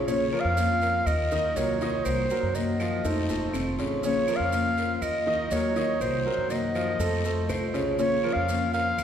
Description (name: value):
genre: latin, Cuban son and guajira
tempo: 121 BPM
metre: 4/4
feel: straight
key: Bb harmonic minor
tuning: A4 = 440 Hz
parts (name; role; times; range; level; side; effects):
- picked steel-string acoustic guitar; accompaniment; 0.0-9.0 s; C3 to C5; -31 LUFS; left 5 dB; none
- bright grand piano; arpeggios; 0.0-9.0 s; Db3 to F5; -30 LUFS; right 3 dB; none
- upright bass; bass; 0.0-9.0 s; Eb1 to Gb2; -31 LUFS; equal; none
- mellow clarinet; melody; 0.1-9.0 s; C5 to F5; -28 LUFS; equal; none
- guiro; percussion; 0.1-9.0 s; none; -44 LUFS; left 4 dB; none
- maracas; percussion; 0.1-9.0 s; none; -45 LUFS; right 5 dB; none
- claves; percussion; 0.3-9.0 s; none; -44 LUFS; right 2 dB; none
- nylon-string guitar; second line; 3.0-3.9, 7.0-7.8 s; C4 to C5; -34 LUFS; left 1 dB; none
room: wet concert hall reverb, RT60 2.1 s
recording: recorded in a church or concert hall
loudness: -24 LUFS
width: side -9 dB against mid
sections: 0.0-9.0 A section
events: none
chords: 0.1 Bbmadd9; 1.1 Cm7b5; 3.0 F7; 4.0 Bbmadd9; 5.0 Ebmadd9; 6.0 Cm7b5; 7.0 F7; 8.0 Bbmadd9